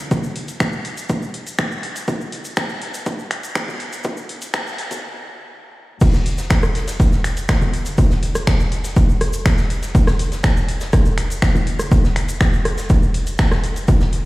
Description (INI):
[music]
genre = techno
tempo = 122 BPM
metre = 4/4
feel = straight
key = none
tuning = none
[part]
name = electronic kick drum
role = drums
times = 0.1-14.0 s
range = none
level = -17 LUFS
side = equal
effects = none
[part]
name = techno drum kit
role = drums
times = 0.1-14.2 s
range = congas, crash cymbal, finger snaps, hi-hat, rim click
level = -24 LUFS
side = equal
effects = sidechain pumping on hats, sidechain pumping on perc, sidechain pumping on cymbals
[part]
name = tube shaker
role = percussion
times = 0.1-14.1 s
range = none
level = -36 LUFS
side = left 2 dB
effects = none
[part]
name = huge arena drum kit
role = drums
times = 6.0-14.2 s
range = hi-hat, snare drum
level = -33 LUFS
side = left 1 dB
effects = sidechain pumping on hats, high-pass filter on hats, high-pass filter on snare, high-pass filter on room
[sound]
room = light reverb, studio reverb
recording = played on a big sound system in a bare room, stone room reverb, high-pass filter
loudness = -16 LUFS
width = side -20 dB against mid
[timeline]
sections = 0.0-6.0 A section; 6.0-14.3 B section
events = build-up 0.0-6.0; stop 5.0-6.0; drop 6.0-14.3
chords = none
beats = | 0.11 0.60 1.09 1.59 | 2.08 2.57 3.06 3.55 | 4.05 4.54 5.03 5.52 | 6.01 6.50 7.00 7.49 | 7.98 8.47 8.96 9.46 | 9.95 10.44 10.93 11.42 | 11.91 12.41 12.90 13.39 | 13.88